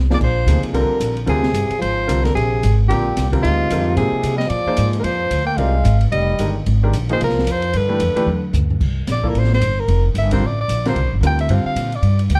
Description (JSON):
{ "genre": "modal jazz", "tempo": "223 BPM", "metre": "4/4", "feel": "swing 60% on 8ths", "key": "Bb mixolydian, C mixolydian from 8.8 s", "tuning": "A4 = 441 Hz", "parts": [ { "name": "upright bass", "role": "bass", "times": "0.0-12.4 s", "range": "F1 to C3", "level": "-20 LUFS", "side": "equal", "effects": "none" }, { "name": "breathy soprano saxophone", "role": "melody", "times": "0.1-12.4 s", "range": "F4 to G5", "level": "-24 LUFS", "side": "equal", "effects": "plate reverb" }, { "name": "breathy tenor saxophone", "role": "second line", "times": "0.1-8.5 s", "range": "Ab2 to Bb3", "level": "-28 LUFS", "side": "equal", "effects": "none" }, { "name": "clear baby grand piano", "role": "accompaniment", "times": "0.1-11.9 s", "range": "C3 to Eb5", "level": "-26 LUFS", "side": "equal", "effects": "none" }, { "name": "open jazz drum kit", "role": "drums", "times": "0.1-12.4 s", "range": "crash cymbal, hi-hat, kick drum, ride cymbal, snare drum, toms", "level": "-30 LUFS", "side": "equal", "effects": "none" } ], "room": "light reverb", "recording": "dark, warm production", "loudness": "-18 LUFS", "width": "mono", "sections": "0.2-8.8 A section; 8.8-12.4 B section", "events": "drum fill 0.0, 8.3-8.8; soprano saxophone solo 8.8-12.4", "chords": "0.2 Bb9; 4.5 Fmadd9; 7.7 G13; 8.8 C9sus4", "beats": "| 0.21 0.48 0.75 1.02 | 1.29 1.56 1.82 2.09 | 2.36 2.63 2.90 3.17 | 3.44 3.71 3.97 4.24 | 4.51 4.78 5.05 5.32 | 5.59 5.86 6.12 6.39 | 6.66 6.93 7.20 7.47 | 7.73 8.00 8.27 8.54 | 8.81 9.08 9.35 9.62 | 9.88 10.15 10.42 10.69 | 10.96 11.23 11.50 11.77 | 12.03 12.30" }